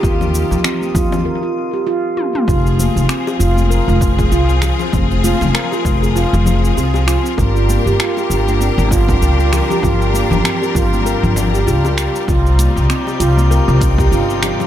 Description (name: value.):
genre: organic downtempo.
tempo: 98 BPM.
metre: 4/4.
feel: swing 57% on 16ths.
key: F minor.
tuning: A4 = 440 Hz.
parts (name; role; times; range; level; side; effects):
bright studio string section; sustained chords; 0.0-14.7 s; C3 to Bb4; -22 LUFS; left 5 dB; sidechain pumping.
handpan; arpeggios; 0.0-14.7 s; C4 to Bb4; -19 LUFS; right 3 dB; tape echo.
upright bass; bass; 0.0-14.5 s; F1 to Eb2; -15 LUFS; equal; sidechain pumping.
deep house drum kit; drums; 0.0-14.7 s; congas, finger snaps, hi-hat, shaker, toms; -22 LUFS; left 2 dB; overdrive, analog delay.
electronic kick drum; drums; 0.0-14.1 s; none; -18 LUFS; equal; overdrive.
drifting glass-harmonics texture; texture; 0.0-1.3, 12.6-14.7 s; Eb3 to Eb6; -28 LUFS; left 2 dB; chorus, built-in reverb.
congas and bongos; percussion; 0.5-14.6 s; none; -25 LUFS; left 2 dB; analog delay.
room: moderate spring reverb, RT60 1.4 s, small room ambience.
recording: echo-heavy mix.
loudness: -12 LUFS.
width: side -11 dB against mid.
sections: 0.0-2.5 A section; 2.5-14.7 B section.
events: break 1.3-2.5; drum fill 2.2-2.5.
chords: 0.0 Eb; 2.5 Fm; 7.4 Gm7b5; 12.3 Cm.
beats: | 0.04 0.65 1.26 1.87 | 2.49 3.10 3.71 4.32 | 4.93 5.55 6.16 6.77 | 7.38 8.00 8.61 9.22 | 9.83 10.45 11.06 11.67 | 12.28 12.89 13.51 14.12.